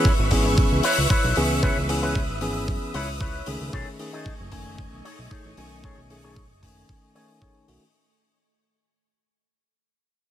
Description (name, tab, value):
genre	nu-disco, nu disco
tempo	114 BPM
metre	4/4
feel	straight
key	unclear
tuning	A4 = 440 Hz
part	bright tine electric piano	accompaniment	0.0-7.8 s	D#3 to G#5	-28 LUFS	equal	sidechain pumping, tape echo
part	string machine, full ensemble	sustained chords	0.0-7.9 s	A3 to D#6	-31 LUFS	right 1 dB	ensemble chorus, sidechain pumping
part	electric guitar with an envelope filter	riff	0.0-7.7 s	D#4 to D#5	-29 LUFS	left 2 dB	lush chorus, low-pass filter, tape echo
part	electronic kick drum	drums	0.0-7.5 s	none	-23 LUFS	equal	none
part	fat analog bass	bass	0.2-7.8 s	F#1 to F#2	-28 LUFS	equal	none
part	hi-hat	drums	0.3-7.8 s	none	-32 LUFS	left 4 dB	none
room	studio reverb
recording	none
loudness	-20 LUFS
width	side -11 dB against mid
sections	0.0-7.9 A section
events	fade-out 0.0-7.9; filter sweep on analog synth bass 0.0-7.9; filter sweep on clean electric guitar 0.0-7.9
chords	0.0 C#m7; 3.7 B13